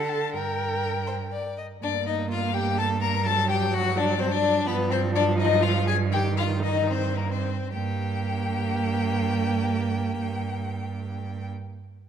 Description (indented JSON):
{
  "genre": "quick classical-period movement for string quartet",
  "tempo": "105-129 BPM",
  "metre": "3/4",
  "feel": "straight",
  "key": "G minor",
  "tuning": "A4 = 440 Hz",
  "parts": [
    { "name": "rich violin", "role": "melody", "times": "0.0-11.5 s", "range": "G4 to Bb5", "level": "-29 LUFS", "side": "left 9 dB", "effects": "none" },
    { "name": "clear violin", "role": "second line", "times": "0.0-11.5 s", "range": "Bb3 to G5", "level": "-30 LUFS", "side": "left 4 dB", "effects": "none" },
    { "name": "warm viola", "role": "accompaniment", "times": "0.0-11.5 s", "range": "Eb3 to Bb4", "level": "-30 LUFS", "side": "right 3 dB", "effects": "none" },
    { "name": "rich cello", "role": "bass", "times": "0.0-11.5 s", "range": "G2 to D3", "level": "-28 LUFS", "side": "right 4 dB", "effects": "none" }
  ],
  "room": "moderate concert hall reverb, RT60 1.8 s",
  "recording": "close, detailed microphones",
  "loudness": "-23 LUFS",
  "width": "side -8 dB against mid",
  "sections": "0.0-1.8 A section; 1.8-7.7 B section; 7.7-11.1 C section",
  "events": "slowing down 4.0-7.7",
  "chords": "0.3 Gm; 3.3 Dadd11/G; 4.7 G7b13; 6.1 Eb69/G; 7.7 Gm"
}